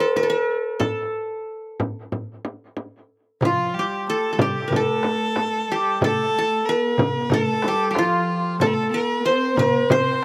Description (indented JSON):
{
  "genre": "Arabic maqam ensemble",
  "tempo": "92 BPM",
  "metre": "4/4",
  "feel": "straight",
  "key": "A maqam bayati",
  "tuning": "A4 = 440 Hz",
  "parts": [
    { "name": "qanun", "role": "melody", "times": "0.0-10.2 s", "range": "F4 to C5", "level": "-24 LUFS", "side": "equal", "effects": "slapback echo" },
    { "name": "frame drum", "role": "percussion", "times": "0.2-10.1 s", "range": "none", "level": "-27 LUFS", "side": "equal", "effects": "none" },
    { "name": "clear violin", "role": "second line", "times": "3.4-10.2 s", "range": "F4 to C5", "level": "-29 LUFS", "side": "equal", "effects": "slapback echo" },
    { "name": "dark studio cello section", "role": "second line", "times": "3.4-10.2 s", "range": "F3 to C4", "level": "-31 LUFS", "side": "equal", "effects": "none" },
    { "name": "darbuka", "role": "percussion", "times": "3.4-10.1 s", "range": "none", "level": "-30 LUFS", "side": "equal", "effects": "none" }
  ],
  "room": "light reverb",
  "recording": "recorded outdoors, with no room sound",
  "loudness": "-22 LUFS",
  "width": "mono",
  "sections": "0.0-3.4 A section; 3.4-10.2 B section",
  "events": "none",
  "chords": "none",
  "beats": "0.16 | 0.81 1.46 2.11 2.76 | 3.41 4.06 4.71 5.36 | 6.01 6.66 7.31 7.96 | 8.61 9.26 9.90"
}